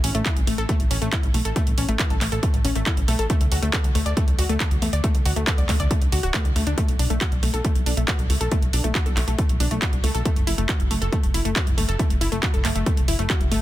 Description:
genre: uplifting trance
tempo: 138 BPM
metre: 4/4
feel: straight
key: B minor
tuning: A4 = 441 Hz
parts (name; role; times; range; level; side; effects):
- wide unison pluck; arpeggios; 0.0-13.6 s; A3 to D5; -27 LUFS; left 2 dB; sidechain pumping, tape echo
- plucky analog bass; bass; 0.0-13.6 s; D1 to E2; -24 LUFS; equal; sidechain pumping
- techno drum kit; drums; 0.0-13.6 s; handclaps, hi-hat; -28 LUFS; right 2 dB; none
- electronic kick drum; drums; 0.3-13.4 s; none; -22 LUFS; equal; none
room: digital ambience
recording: dense, heavily limited modern master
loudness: -19 LUFS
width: side -14 dB against mid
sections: 0.0-13.6 A section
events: none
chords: 0.0 N.C.; 3.3 D5; 6.8 B7(no3); 10.3 F#m

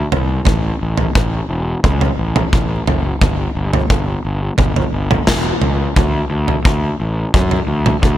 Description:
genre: quiet-loud alternative rock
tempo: 87 BPM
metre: 4/4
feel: straight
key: D major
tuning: A4 = 441 Hz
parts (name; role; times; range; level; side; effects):
- big rock drum kit; drums; 0.1-8.2 s; kick drum, snare drum, toms; -16 LUFS; equal; none
- fuzz fingered electric bass; bass; 0.2-8.2 s; E1 to F#2; -18 LUFS; equal; overdrive
room: light reverb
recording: none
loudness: -14 LUFS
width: side -13 dB against mid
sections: 0.0-8.2 A section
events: none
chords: none

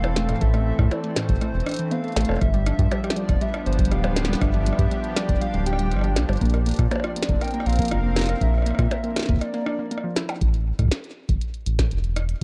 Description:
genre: IDM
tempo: 120 BPM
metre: 4/4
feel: straight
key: A minor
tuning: A4 = 440 Hz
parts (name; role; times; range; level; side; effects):
- warbly nostalgic lead; melody; 0.0-10.2 s; C5 to G5; -34 LUFS; equal; subtle chorus, delay
- warm analog pad; sustained chords; 0.0-10.4 s; E3 to Bb4; -34 LUFS; equal; chorus
- warbly dusty pluck; arpeggios; 0.0-10.3 s; A2 to Bb4; -31 LUFS; equal; chorus, cassette tape, delay
- round analog bass; bass; 0.0-12.4 s; D1 to Bb2; -25 LUFS; equal; tube saturation
- glitchy drum kit; drums; 0.0-12.4 s; hi-hat, percussion blips, rim click, snare drum; -32 LUFS; equal; none
- electronic kick drum; drums; 0.4-12.4 s; none; -26 LUFS; equal; none
room: light reverb, digital ambience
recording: dark, warm production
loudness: -23 LUFS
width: mono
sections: 0.0-10.4 A section; 10.4-12.4 B section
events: break 9.4-10.4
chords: 0.0 Am; 2.4 G7; 6.4 Bbadd9; 10.4 A5

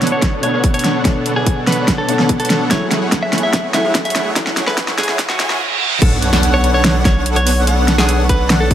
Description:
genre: future bass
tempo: 145 BPM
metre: 4/4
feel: half-time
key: B dorian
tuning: A4 = 440 Hz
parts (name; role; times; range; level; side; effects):
- clean electric guitar; melody; 0.0-8.7 s; F#4 to E5; -21 LUFS; equal; sidechain pumping, low-pass filter, dub echo
- felt-muted upright piano; accompaniment; 0.0-6.0 s; B2 to C#5; -24 LUFS; left 3 dB; sidechain pumping
- shimmering ambient pad; sustained chords; 0.0-5.6 s; B2 to C#5; -31 LUFS; right 1 dB; none
- dense compressed supersaw; riff; 0.0-8.7 s; A3 to G#5; -20 LUFS; right 1 dB; sidechain pumping, low-pass filter
- pop drum kit; drums; 0.0-8.7 s; crash cymbal, hi-hat, snare drum; -18 LUFS; equal; overdrive
- riser, reverse cymbal and sub drop; sound effects; 2.5-7.7 s; none; -25 LUFS; right 3 dB; none
- electronic kick drum; drums; 0.2-8.7 s; none; -16 LUFS; equal; none
- airy dreamy lead; arpeggios; 6.0-8.7 s; F#5; -23 LUFS; left 1 dB; chorus, sidechain pumping, dub echo
- saturated sub bass; bass; 6.0-8.7 s; B1; -16 LUFS; equal; sidechain pumping
room: light reverb, digital ambience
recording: high-pass filter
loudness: -13 LUFS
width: side -10 dB against mid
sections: 0.0-6.0 A section; 6.0-8.7 B section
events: build-up 0.0-6.0; drum fill 0.0-5.6; filter sweep on supersaw synth 0.0-6.0; filter sweep 0.0-6.0; reverse cymbal 5.2-6.0; drop 6.0-8.7; impact 6.0-7.7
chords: 0.0 Bm9; 2.7 F#m9; 6.0 Bm9

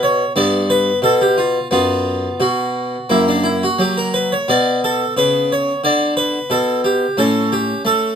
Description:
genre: classical, baroque-style suite movement for harpsichord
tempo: 89 BPM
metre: 4/4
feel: rubato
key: B minor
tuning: A4 = 442 Hz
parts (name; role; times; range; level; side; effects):
- harpsichord; solo; 0.0-8.2 s; F#2 to D5; -14 LUFS; equal; none
room: light reverb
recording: close, detailed microphones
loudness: -14 LUFS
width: side -8 dB against mid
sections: 0.0-8.2 A section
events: none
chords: 0.0 G; 1.7 B5/F#; 3.1 F#; 4.5 Bm; 7.2 A

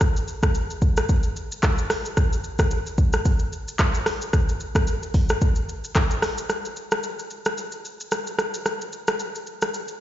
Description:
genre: afrobeats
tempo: 111 BPM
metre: 4/4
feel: swing 55% on 16ths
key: none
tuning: none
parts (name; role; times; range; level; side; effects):
- afro-pop drum kit; drums; 0.0-10.0 s; handclaps, hi-hat, kick drum, rim click, shaker; -21 LUFS; equal; none
room: moderate lush hall reverb, RT60 1.8 s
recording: played on a big sound system in a bare room, large studio reverb, nothing above 7.6 kHz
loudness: -21 LUFS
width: side -12 dB against mid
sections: 0.0-6.5 A section; 6.5-10.0 B section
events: break 6.5-10.0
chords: none

